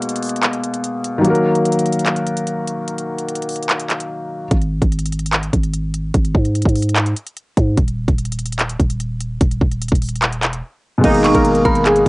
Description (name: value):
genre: hip hop, trap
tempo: 147 BPM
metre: 4/4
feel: half-time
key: G# minor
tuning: A4 = 440 Hz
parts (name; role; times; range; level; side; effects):
- felt-muted upright piano; accompaniment; 0.0-4.5, 11.0-12.1 s; B2 to A#4; -17 LUFS; left 1 dB; low-pass filter, cassette tape
- trap drum kit; drums; 0.0-12.1 s; crash cymbal, handclaps, hi-hat, kick drum; -18 LUFS; equal; cassette tape
- growling 808-style bass; bass; 4.5-12.1 s; D#1 to G#2; -20 LUFS; equal; none
- warbly lo-fi synth keys; melody; 11.0-12.1 s; D#4 to A#4; -15 LUFS; right 1 dB; chorus, low-pass filter, cassette tape
- dark detuned synth bell; second line; 11.2-11.8 s; B5 to C#6; -21 LUFS; right 3 dB; chorus, tremolo, cassette tape
room: little or no reverb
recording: home recording on cassette, nothing above 10.5 kHz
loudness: -16 LUFS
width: side -22 dB against mid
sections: 0.0-11.0 A section; 11.0-12.1 B section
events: break 0.0-4.5; drums muted 10.6-11.0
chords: 0.0 G#madd9; 1.2 D#m; 4.5 N.C.; 11.0 G#madd9